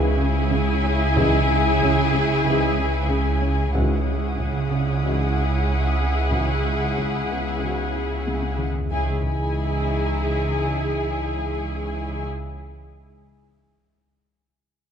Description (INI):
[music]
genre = cinematic, suspense film score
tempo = 93 BPM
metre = 4/4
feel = straight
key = C# minor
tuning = A4 = 436 Hz
[part]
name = muted studio violin section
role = melody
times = 0.0-12.2 s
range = F#5 to G#5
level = -30 LUFS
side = left 4 dB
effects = none
[part]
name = muted symphonic violin section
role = second line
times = 0.0-12.2 s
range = G#4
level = -29 LUFS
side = left 2 dB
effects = none
[part]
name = muted symphonic viola section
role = accompaniment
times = 0.0-12.3 s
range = E4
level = -29 LUFS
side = right 2 dB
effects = none
[part]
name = mellow French horn section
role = sustained chords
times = 0.0-12.3 s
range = G#3 to G#4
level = -32 LUFS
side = left 3 dB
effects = none
[part]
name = warm trombone section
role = sustained chords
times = 0.0-12.3 s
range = G#2 to E3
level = -33 LUFS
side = right 1 dB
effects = none
[part]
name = muted studio cello section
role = riff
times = 0.0-8.8 s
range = C#3 to C#4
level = -31 LUFS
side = equal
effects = none
[part]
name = muted symphonic cello section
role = bass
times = 0.0-12.2 s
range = C#3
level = -29 LUFS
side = right 4 dB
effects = none
[part]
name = muted symphonic double bass section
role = bass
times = 0.0-12.2 s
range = C#2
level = -26 LUFS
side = right 2 dB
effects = none
[part]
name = analog drone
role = drone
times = 0.0-12.2 s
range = C#2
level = -28 LUFS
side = left 1 dB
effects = chorus
[part]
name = felt-muted upright piano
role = texture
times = 0.0-8.9 s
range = B3 to F#5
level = -39 LUFS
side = left 4 dB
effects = none
[part]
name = taiko ensemble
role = drums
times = 1.2-10.2 s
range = none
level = -31 LUFS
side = left 1 dB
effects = none
[part]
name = timpani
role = percussion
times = 3.7-4.7, 8.9-13.0 s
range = none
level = barely audible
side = none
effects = none
[part]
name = muted symphonic violin section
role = texture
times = 3.8-11.1 s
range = G#5 to D#6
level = -37 LUFS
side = left 5 dB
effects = none
[sound]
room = wet concert hall reverb, RT60 2.3 s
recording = nothing above 10.3 kHz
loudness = -20 LUFS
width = side -8 dB against mid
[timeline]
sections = 0.0-8.9 A section; 8.9-11.5 B section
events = drum fill 8.3-8.9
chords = 0.0 C#m; 3.7 Eadd9/C#; 8.9 C#m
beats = 0.52 | 1.17 1.81 2.46 3.10 | 3.75 4.39 5.04 5.68 | 6.33 6.97 7.62 8.26 | 8.91 9.55 10.20 10.84